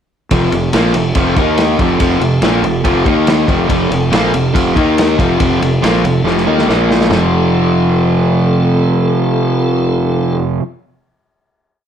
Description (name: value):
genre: classic rock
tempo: 141 BPM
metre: 4/4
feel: straight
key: F major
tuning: A4 = 439 Hz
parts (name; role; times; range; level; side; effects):
- tonewheel organ; sustained chords; 0.3-10.4 s; Bb3 to Bb4; -22 LUFS; left 2 dB; slow rotary speaker, overdrive, chorus vibrato
- overdriven semi-hollow guitar; riff; 0.3-10.6 s; F2 to Eb4; -16 LUFS; left 9 dB; none
- sludgy distorted guitar; riff; 0.3-10.6 s; F2 to Eb4; -15 LUFS; right 7 dB; overdrive
- fuzz fingered electric bass; bass; 0.3-10.4 s; F1 to Eb2; -19 LUFS; left 1 dB; overdrive
- vintage drum kit; drums; 0.3-7.2 s; kick drum, ride cymbal, snare drum, toms; -17 LUFS; equal; none
room: moderate studio reverb, RT60 0.7 s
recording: none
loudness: -11 LUFS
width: side -8 dB against mid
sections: 0.3-7.1 riff; 7.1-10.5 final chord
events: drum fill 6.3-7.1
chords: 0.3 F; 1.4 Eb5; 1.8 F; 3.1 Eb5; 3.5 F; 4.8 Eb5; 5.2 F; 6.7 Bb5; 7.1 F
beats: | 0.30 0.73 1.15 1.57 | 2.00 2.42 2.85 3.27 | 3.70 4.12 4.55 4.97 | 5.40 5.83 6.25 6.68 | 7.10 7.53 7.95 8.38 | 8.80 9.23 9.65 10.08